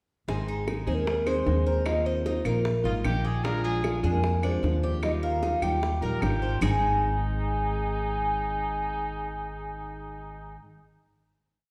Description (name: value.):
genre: latin, Cuban son and guajira.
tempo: 151 BPM.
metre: 4/4.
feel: straight.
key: Ab major.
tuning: A4 = 439 Hz.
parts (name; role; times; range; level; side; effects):
nylon-string guitar; accompaniment; 0.3-10.6 s; Ab2 to Ab4; -36 LUFS; equal; none.
Cuban tres; arpeggios; 0.3-10.6 s; Ab3 to Eb5; -37 LUFS; equal; none.
upright bass; bass; 0.3-10.5 s; Ab1 to F2; -32 LUFS; equal; none.
bongos; percussion; 0.3-6.7 s; none; -38 LUFS; equal; none.
claves; percussion; 0.7-6.7 s; none; -44 LUFS; equal; none.
hollow clarinet-like synth lead; melody; 0.9-10.6 s; Bb4 to Ab5; -33 LUFS; equal; chorus.
clear trumpet; second line; 2.8-10.6 s; Eb4 to Bb4; -39 LUFS; equal; none.
room: wet recital hall reverb, RT60 1.4 s.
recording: heard from further back in the room.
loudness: -27 LUFS.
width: mono.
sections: 0.3-6.6 verse; 6.6-9.8 final chord.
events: none.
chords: 0.3 Ab; 1.9 Ebsus2; 3.4 Bb7; 5.0 Ebadd9; 6.6 Ab.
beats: | 0.28 0.68 1.07 1.47 | 1.86 2.26 2.65 3.05 | 3.44 3.84 4.24 4.63 | 5.03 5.43 5.82 6.22 | 6.62 7.02 7.41 7.81 | 8.21 8.60 9.00 9.40.